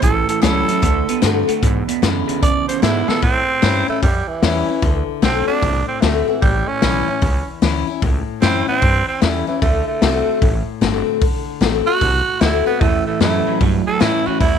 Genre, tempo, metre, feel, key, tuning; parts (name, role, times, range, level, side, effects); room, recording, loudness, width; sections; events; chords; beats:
rockabilly; 150 BPM; 4/4; swing 64% on 8ths; A mixolydian; A4 = 439 Hz
growling tenor saxophone; melody; 0.0-14.6 s; E3 to D5; -20 LUFS; right 5 dB; slapback echo
picked steel-string acoustic guitar; accompaniment; 0.0-14.6 s; E2 to F#4; -22 LUFS; left 12 dB
electric guitar through a small old amp; riff; 0.0-3.2, 12.8-14.6 s; E2 to B3; -21 LUFS; right 16 dB
upright bass; bass; 0.0-14.6 s; F#1 to A2; -21 LUFS; right 1 dB
vintage drum kit; drums; 0.0-14.5 s; hi-hat, kick drum, snare drum; -18 LUFS; left 2 dB
light reverb, small room ambience; 1960s-style stereo with parts hard left and right; -15 LUFS; side -8 dB against mid
0.0-3.2 A section; 3.2-14.6 B section
drum fill 3.0; tenor saxophone solo 3.2-14.6
0.0 A7; 0.8 D7; 1.6 E7; 3.2 A7; 4.8 D7; 6.4 A7; 9.6 D7; 12.8 A7
| 0.03 0.43 0.83 1.23 | 1.63 2.03 2.43 2.83 | 3.23 3.63 4.03 4.43 | 4.83 5.23 5.63 6.03 | 6.43 6.83 7.22 7.62 | 8.02 8.42 8.82 9.22 | 9.62 10.02 10.42 10.82 | 11.22 11.62 12.01 12.41 | 12.81 13.21 13.61 14.01 | 14.41